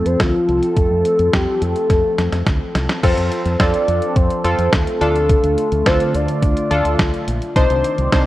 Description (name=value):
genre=synth-pop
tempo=106 BPM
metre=4/4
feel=straight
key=unclear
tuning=A4 = 438 Hz
part: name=soft octave-layered synth lead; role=melody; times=0.0-8.3 s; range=F4 to D5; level=-19 LUFS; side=left 1 dB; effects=chorus, phaser, analog delay
part: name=phased analog pad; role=sustained chords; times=0.0-8.3 s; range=D3 to D5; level=-25 LUFS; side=equal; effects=phaser, chorus
part: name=fingered electric bass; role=bass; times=0.0-8.2 s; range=Bb1 to F2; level=-21 LUFS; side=equal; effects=none
part: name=detuned 8-bit digital drum machine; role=drums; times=0.1-8.3 s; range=crash cymbal, hi-hat, kick drum, snare drum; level=-18 LUFS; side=equal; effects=none
part: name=funky polysynth comp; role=accompaniment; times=3.0-8.3 s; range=C4 to C5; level=-22 LUFS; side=equal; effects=chorus
room=moderate lush hall reverb, RT60 1.8 s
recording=worn, warbling old tape, cassette tape, warbly pitch drift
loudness=-14 LUFS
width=side -15 dB against mid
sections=0.0-3.0 A section; 3.0-8.3 B section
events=drum fill 1.9-3.0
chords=0.0 F; 5.0 Dm; 7.6 Cmadd9